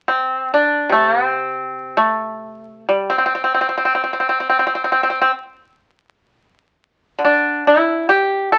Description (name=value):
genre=chinese traditional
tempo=free time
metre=none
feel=none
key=C gong mode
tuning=A4 = 439 Hz
part: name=pipa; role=solo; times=0.1-8.6 s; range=C3 to A4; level=-17 LUFS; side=equal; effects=none
room=moderate studio reverb, RT60 0.7 s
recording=very old 78 rpm record, vinyl crackle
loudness=-17 LUFS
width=mono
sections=0.0-7.2 A section; 7.2-8.6 B section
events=none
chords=none